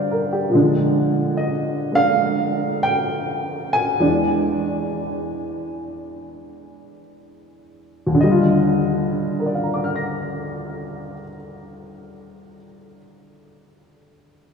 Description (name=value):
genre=solo jazz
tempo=50-72 BPM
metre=4/4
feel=swing 68% on 8ths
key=Eb major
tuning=A4 = 439 Hz
part: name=warm upright piano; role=solo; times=0.0-14.5 s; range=Eb2 to Bb6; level=-19 LUFS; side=equal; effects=none
room=wet cathedral reverb, RT60 4.7 s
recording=recorded in a church or concert hall, studio reverb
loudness=-18 LUFS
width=side -6 dB against mid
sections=0.0-8.2 A section; 8.2-13.0 B section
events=slowing down 0.5-8.2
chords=0.0 Gm7; 0.5 Bb7; 4.0 E7; 8.2 Ebmaj9